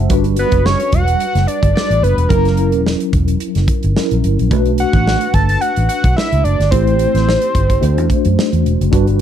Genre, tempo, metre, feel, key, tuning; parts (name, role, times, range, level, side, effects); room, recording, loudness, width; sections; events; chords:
polished 1980s jazz-funk pop; 109 BPM; 4/4; swing 54% on 16ths; D major; A4 = 440 Hz
tine electric piano; accompaniment; 0.0-9.2 s; F#3 to A5; -19 LUFS; left 1 dB; medium stereo tremolo, lush chorus
vintage muted fingered electric bass; bass; 0.0-9.2 s; E1 to F#2; -15 LUFS; equal
modern studio drum kit; drums; 0.1-9.2 s; hi-hat, kick drum, snare drum; -18 LUFS; equal
fat analog lead; melody; 0.4-8.6 s; A#4 to A5; -17 LUFS; right 2 dB; phaser, slapback echo
little or no reverb; dry, close 1970s-style studio recording; -12 LUFS; side -10 dB against mid
0.0-9.2 A section
0.1 Gmaj7; 2.3 F#7; 4.5 Bm7; 6.7 Am7; 7.8 D7